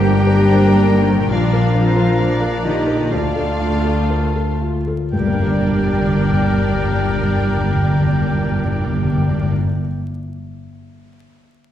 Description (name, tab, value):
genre	cinematic, emotional film score for orchestra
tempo	58-75 BPM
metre	4/4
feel	rubato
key	G minor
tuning	A4 = 440 Hz
part	rich symphonic violin section	melody	0.0-9.5 s	Bb4 to F5	-30 LUFS	left 3 dB	none
part	clear clarinet	second line	0.0-9.5 s	D4 to Bb4	-29 LUFS	equal	none
part	clear oboe	second line	0.0-9.5 s	G5 to Bb5	-28 LUFS	left 1 dB	none
part	rich chamber violin section	second line	0.0-9.5 s	D5 to G5	-32 LUFS	left 4 dB	none
part	silver concert flute	second line	0.0-9.5 s	D5 to G5	-31 LUFS	equal	none
part	clear symphonic viola section	accompaniment	0.0-9.5 s	Eb3 to Bb4	-26 LUFS	equal	none
part	felt-muted upright piano	accompaniment	0.0-11.7 s	D2 to D5	-24 LUFS	left 1 dB	none
part	dark French horn section	sustained chords	0.0-9.5 s	D4 to G4	-25 LUFS	left 3 dB	none
part	concert harp	arpeggios	0.0-9.9 s	G2 to G5	-27 LUFS	left 2 dB	none
part	clear symphonic double bass section	bass	0.0-9.5 s	G1 to D2	-22 LUFS	equal	none
part	rich symphonic cello section	bass	0.0-9.5 s	D3 to G3	-21 LUFS	right 1 dB	none
part	timpani	percussion	5.1-9.5 s	G2	-19 LUFS	equal	none
room	wet scoring stage reverb, RT60 1.8 s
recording	heard from further back in the room, vinyl crackle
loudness	-14 LUFS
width	side -11 dB against mid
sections	0.0-5.1 A section; 5.1-9.2 B section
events	slowing down 0.0-5.1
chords	0.0 Gm; 1.3 Bb; 3.1 Dm; 5.1 Gm